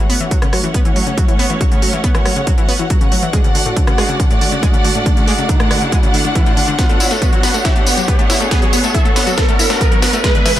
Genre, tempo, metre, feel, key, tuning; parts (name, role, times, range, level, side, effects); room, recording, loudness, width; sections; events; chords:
uplifting trance; 139 BPM; 4/4; straight; A4 = 439 Hz
warm symphonic string section; sustained chords; 0.0-10.6 s; G#3 to F#5; -19 LUFS; right 1 dB; sidechain pumping
analog pluck; arpeggios; 0.0-10.6 s; A2 to E4; -20 LUFS; left 2 dB; chorus, sidechain pumping, dub echo
riser; sound effects; 2.4-10.6 s; -23 LUFS; right 1 dB
techno drum kit; drums; 0.1-10.6 s; hi-hat, rim click, snare drum, tambourine; -20 LUFS; equal; high-pass filter on hats, high-pass filter on snare, high-pass filter on perc, high-pass filter on room
electronic kick drum; drums; 0.3-10.3 s; -14 LUFS; equal
light reverb; -12 LUFS; side -12 dB against mid
0.0-10.6 A section
build-up 0.0-10.6; riser 2.4-10.6; drum fill 6.8-10.6
0.0 F#m; 3.3 D; 6.8 Bmadd9